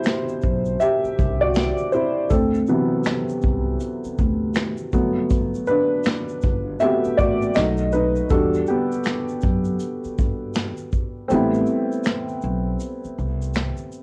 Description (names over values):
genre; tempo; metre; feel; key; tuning
lo-fi hip hop; 80 BPM; 4/4; swing 63% on 16ths; A dorian; A4 = 439 Hz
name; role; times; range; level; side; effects
felt-muted upright piano; accompaniment; 0.0-14.0 s; B2 to E5; -24 LUFS; equal; low-pass filter
vintage brush drum kit; drums; 0.0-14.0 s; finger snaps, hi-hat, kick drum, shaker, snare drum; -26 LUFS; equal; cassette tape
upright bass; bass; 0.4-13.7 s; G1 to G2; -28 LUFS; equal; none
room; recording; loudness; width
light reverb; home recording on cassette; -22 LUFS; mono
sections
0.0-11.3 A section; 11.3-14.0 A section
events
felt piano solo 0.0-11.3; kick muted 11.3-14.0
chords
0.0 Am9 (rootless); 2.3 D13; 4.9 Gmaj9; 7.6 B7; 8.3 Em9 (rootless); 11.3 Am9